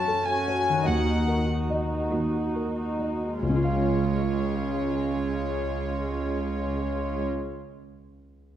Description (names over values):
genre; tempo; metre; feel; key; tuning
cinematic, emotional film score for orchestra; 48 BPM; 4/4; rubato; Db major; A4 = 438 Hz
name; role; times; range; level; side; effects
warm chamber violin section; melody; 0.0-7.2 s; Db5 to A5; -30 LUFS; left 3 dB; none
dark concert grand piano; accompaniment; 0.0-8.6 s; Db2 to F5; -28 LUFS; equal; none
dark studio viola section; accompaniment; 0.0-7.3 s; Ab3 to Gb4; -32 LUFS; right 2 dB; none
concert harp; arpeggios; 0.0-7.5 s; Gb2 to F5; -35 LUFS; left 4 dB; none
warm symphonic cello section; bass; 0.0-7.2 s; Db2 to Gb2; -31 LUFS; right 4 dB; none
room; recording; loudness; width
wet scoring stage reverb, RT60 1.6 s; dark, warm production; -24 LUFS; side -10 dB against mid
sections
0.0-3.4 A section; 3.4-8.5 B section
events
slowing down 0.0-3.4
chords
0.0 Gbm; 0.9 Ebm; 3.4 Db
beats
0.87 2.11 | 3.42 4.68 5.95 7.22